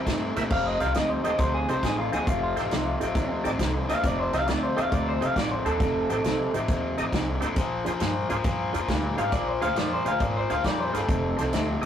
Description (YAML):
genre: electric blues shuffle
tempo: 136 BPM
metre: 4/4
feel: swing 67% on 8ths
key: F mixolydian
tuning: A4 = 439 Hz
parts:
  - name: overdriven semi-hollow guitar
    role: riff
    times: 0.0-11.9 s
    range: F2 to A3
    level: -28 LUFS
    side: left 2 dB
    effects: none
  - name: upright bass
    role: bass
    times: 0.0-11.9 s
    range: F1 to Bb2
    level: -32 LUFS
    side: equal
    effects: none
  - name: natural country drum kit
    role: drums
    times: 0.1-11.9 s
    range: crash cymbal, hi-hat, kick drum, snare drum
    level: -29 LUFS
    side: equal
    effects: none
  - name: tonewheel organ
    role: accompaniment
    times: 0.4-11.9 s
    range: D4 to E5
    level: -31 LUFS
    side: right 2 dB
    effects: overdrive, chorus vibrato, slow rotary speaker
  - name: electric guitar through a small old amp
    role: second line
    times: 0.5-6.5, 9.2-11.8 s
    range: F4 to F5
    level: -28 LUFS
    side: equal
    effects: none
room: moderate small room reverb, RT60 0.5 s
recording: rough rehearsal-room recording, tube saturation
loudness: -23 LUFS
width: side -9 dB against mid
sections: 0.5-11.9 A section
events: clean electric guitar solo 0.5-11.9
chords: 0.0 C7; 0.5 F7; 7.6 Bb7; 11.1 F7